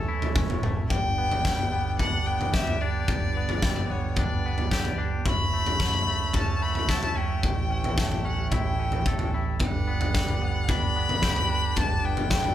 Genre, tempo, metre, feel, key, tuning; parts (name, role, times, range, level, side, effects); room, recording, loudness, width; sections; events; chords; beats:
post-rock; 110 BPM; 4/4; straight; A4 = 439 Hz
pedal harmonium; sustained chords; 0.0-12.5 s; D3 to E5; -37 LUFS; right 1 dB
twangy electric guitar; arpeggios; 0.0-12.5 s; D2 to A4; -35 LUFS; left 3 dB; slapback echo
growling fingered electric bass; bass; 0.0-12.5 s; E1 to A1; -32 LUFS; left 1 dB; overdrive
big rock drum kit; drums; 0.2-12.5 s; kick drum, snare drum, toms; -26 LUFS; right 1 dB
clear violin; melody; 0.9-12.5 s; C#5 to B5; -29 LUFS; left 3 dB
light reverb; band playing live in one room; -23 LUFS; side -11 dB against mid
0.9-12.5 A section
0.0 A; 0.9 G; 5.3 Dmaj9/F#; 7.4 A7; 9.6 Gmaj7
0.35 | 0.90 1.44 1.99 2.54 | 3.08 3.62 4.17 4.71 | 5.26 5.80 6.35 6.89 | 7.43 7.97 8.52 9.06 | 9.60 10.14 10.69 11.23 | 11.77 12.31